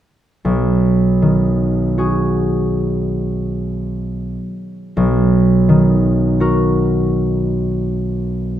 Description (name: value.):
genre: classical.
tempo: 81 BPM.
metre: 3/4.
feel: uneven beats, rubato.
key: B major.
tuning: A4 = 440 Hz.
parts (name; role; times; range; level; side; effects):
concert harp; accompaniment; 0.4-8.6 s; B1 to A#4; -14 LUFS; equal; none.
room: wet recital hall reverb, RT60 1.4 s.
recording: none.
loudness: -14 LUFS.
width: side -11 dB against mid.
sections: 0.5-8.6 A section.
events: none.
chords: 0.5 B6; 5.0 Bmaj7.